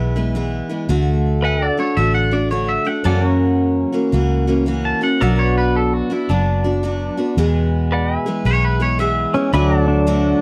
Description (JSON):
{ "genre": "honky-tonk and classic country", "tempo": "111 BPM", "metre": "4/4", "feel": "swing 64% on 8ths", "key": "unclear", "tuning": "A4 = 435 Hz", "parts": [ { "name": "twangy electric guitar", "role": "second line", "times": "0.0-9.3 s", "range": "D4 to A5", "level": "-24 LUFS", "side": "equal", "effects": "tape echo" }, { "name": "picked steel-string acoustic guitar", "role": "accompaniment", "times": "0.0-10.4 s", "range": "E2 to G#4", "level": "-22 LUFS", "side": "equal", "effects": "none" }, { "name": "pedal steel guitar", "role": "sustained chords", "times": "0.0-10.4 s", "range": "A4 to A5", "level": "-29 LUFS", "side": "equal", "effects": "lush chorus" }, { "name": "vintage muted fingered electric bass", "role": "bass", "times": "0.0-10.3 s", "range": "F#1 to F#2", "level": "-21 LUFS", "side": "equal", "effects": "none" }, { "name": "pedal steel guitar", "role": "melody", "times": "9.3-10.4 s", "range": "E3 to D4", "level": "-19 LUFS", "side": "equal", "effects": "none" } ], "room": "light reverb", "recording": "dry, close 1970s-style studio recording", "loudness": "-18 LUFS", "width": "mono", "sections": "0.0-9.5 A section", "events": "clean electric guitar solo 0.0-9.5", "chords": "0.0 E; 0.9 D; 3.1 F#7; 5.2 Bm; 7.4 E; 9.5 D", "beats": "0.35 | 0.89 1.43 1.97 2.51 | 3.05 3.59 4.13 4.67 | 5.21 5.75 6.29 6.83 | 7.37 7.91 8.45 8.99 | 9.53 10.07" }